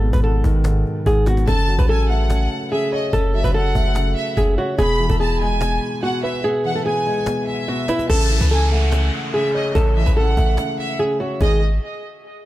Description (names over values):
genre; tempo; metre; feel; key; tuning
hip hop, trap; 145 BPM; 4/4; half-time; unclear; A4 = 441 Hz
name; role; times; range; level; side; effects
flamenco guitar; melody; 0.0-11.6 s; E4 to B4; -23 LUFS; equal; low-pass filter, tape echo
dark concert grand piano; accompaniment; 0.0-11.6 s; G#2 to C#5; -25 LUFS; equal; low-pass filter
warm 808-style bass; bass; 0.0-11.8 s; E1 to C#2; -18 LUFS; equal; none
cajon; drums; 0.1-11.5 s; none; -27 LUFS; equal; none
rich studio violin section; second line; 1.5-11.6 s; D#5 to B5; -25 LUFS; equal; tape echo
downlifter; sound effects; 8.1-11.4 s; none; -29 LUFS; left 1 dB; none
room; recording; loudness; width
studio ambience; none; -16 LUFS; side -15 dB against mid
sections
0.0-8.1 A section; 8.1-11.4 B section; 11.4-12.5 C section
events
kick muted 6.4-8.1; break 10.6-11.4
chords
0.0 G#m; 1.5 F#m; 4.8 E; 8.1 A; 11.4 G#m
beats
0.23 0.65 1.06 | 1.48 1.89 2.30 2.72 | 3.13 3.54 3.96 4.37 | 4.79 5.20 5.61 6.03 | 6.44 6.86 7.27 7.68 | 8.10 8.51 8.92 9.34 | 9.75 10.16 10.58 10.99 | 11.41